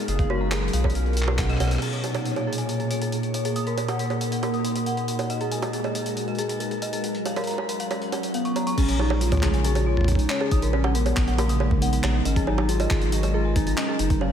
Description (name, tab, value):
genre	IDM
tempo	138 BPM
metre	4/4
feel	straight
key	Bb phrygian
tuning	A4 = 440 Hz
part	warbly nostalgic lead	melody	0.0-1.6, 8.3-14.3 s	Bb3 to A#4	-30 LUFS	equal	chorus, analog delay
part	glassy FM pad	sustained chords	0.0-14.3 s	Bb2 to Db5	-28 LUFS	equal	ensemble chorus, built-in reverb
part	flickering grainy texture	texture	0.0-1.8 s	Ab4 to F5	-44 LUFS	right 2 dB	none
part	round analog bass	bass	0.1-1.8, 8.8-14.3 s	Gb1 to Cb2	-24 LUFS	equal	none
part	jungle sampler-style drum kit	drums	0.1-14.3 s	bongos, crash cymbal, handclaps, hi-hat, rim click	-30 LUFS	right 3 dB	overdrive, ping-pong delay
part	dark detuned synth bell	arpeggios	0.2-14.3 s	Ab4 to Eb6	-30 LUFS	left 1 dB	chorus, phaser, low-pass filter, diffuse ambient delay
part	electronic kick drum	drums	0.2-1.5, 8.8-14.2 s	none	-24 LUFS	equal	overdrive
room	moderate huge ambient reverb, RT60 4.6 s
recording	dreamy mix soaked in reverb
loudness	-22 LUFS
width	side -8 dB against mid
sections	0.0-1.8 A section; 1.8-8.8 B section; 8.8-14.3 C section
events	drum fill 1.4-1.8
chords	0.1 Gbmaj7; 1.0 Bmaj7; 1.8 Bbm7; 3.6 Ebm/Bb; 5.3 Abm7; 7.0 Gbmaj7; 8.8 Bbm7; 10.5 Ebm/Bb; 12.3 Abm7